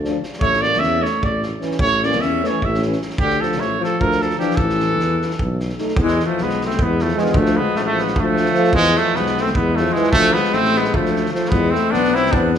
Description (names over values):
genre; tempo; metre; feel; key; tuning
balkan folk, Balkan brass band; 303 BPM (eighths); 7/8; straight; A phrygian dominant, E phrygian dominant from 6.0 s; A4 = 440 Hz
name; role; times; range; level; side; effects
warm French horn; accompaniment; 0.0-11.5 s; G#3 to D#4; -28 LUFS; left 5 dB; none
warm euphonium; accompaniment; 0.0-11.5 s; E3 to A3; -26 LUFS; right 5 dB; none
dark tuba; bass; 0.0-12.6 s; A1 to E2; -22 LUFS; equal; none
loose indie drum kit; percussion; 0.0-12.6 s; kick drum, snare drum; -25 LUFS; equal; none
warm trumpet; melody; 0.4-12.5 s; G#3 to E5; -20 LUFS; right 3 dB; none
warm alto saxophone; second line; 0.4-12.5 s; D3 to C#4; -22 LUFS; left 5 dB; none
room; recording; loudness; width
wet recital hall reverb, RT60 1.7 s; recorded in a church or concert hall; -16 LUFS; side -8 dB against mid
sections
0.0-6.0 A section; 6.0-12.6 B section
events
none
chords
0.4 A; 3.2 Dm; 4.6 A5; 5.4 B7; 6.0 E; 7.3 Dm; 8.7 E; 10.1 Dm; 11.5 E